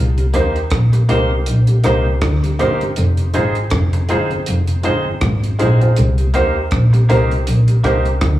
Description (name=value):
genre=roots reggae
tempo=80 BPM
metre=4/4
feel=swing 57% on 16ths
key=C minor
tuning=A4 = 440 Hz
part: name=dark double bass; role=bass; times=0.0-8.4 s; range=F1 to Eb2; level=-15 LUFS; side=equal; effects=none
part: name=mellow tonewheel organ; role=accompaniment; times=0.2-8.1 s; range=F2 to F4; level=-25 LUFS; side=right 1 dB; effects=slow rotary speaker, dub echo
part: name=deep reggae drum kit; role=drums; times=0.2-8.4 s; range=hi-hat, kick drum, rim click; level=-23 LUFS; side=equal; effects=dub echo
part: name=twangy electric guitar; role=accompaniment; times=0.3-8.1 s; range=Bb3 to C5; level=-24 LUFS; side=right 2 dB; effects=dub echo, slapback echo
part: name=warm upright piano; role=stabs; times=0.3-8.1 s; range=Eb4 to C5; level=-21 LUFS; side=left 1 dB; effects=slapback echo
room=small room ambience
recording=live gig heard through the venue's PA, club reverb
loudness=-13 LUFS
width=side -14 dB against mid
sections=0.0-8.4 A section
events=none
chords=0.0 Cm7; 3.0 Fm7; 6.0 Cm7